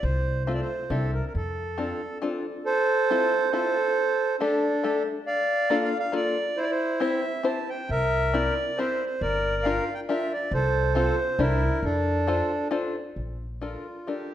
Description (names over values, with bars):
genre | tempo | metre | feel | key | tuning
musette waltz | 137 BPM | 3/4 | swing 53% on 8ths | F major | A4 = 439 Hz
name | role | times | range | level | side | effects
accordion | melody | 0.0-14.3 s | D4 to A5 | -25 LUFS | right 1 dB | none
upright bass | bass | 0.0-1.9, 7.9-13.7 s | G1 to F2 | -28 LUFS | equal | none
open-back banjo | accompaniment | 0.5-14.3 s | A3 to C5 | -29 LUFS | left 3 dB | none
room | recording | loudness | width
wet recital hall reverb, RT60 1.5 s | none | -23 LUFS | side -11 dB against mid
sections
0.0-2.7 A section; 2.7-13.2 A section; 13.2-14.3 B section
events
none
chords
0.0 F/C; 0.9 Cadd9; 1.3 F6; 2.7 Fmaj7; 4.0 Gsus2; 5.3 Bbmaj7; 6.6 C; 7.9 C7; 9.2 Gm7; 10.5 F/C; 11.4 Cadd9; 11.8 F6; 13.2 Bbmaj7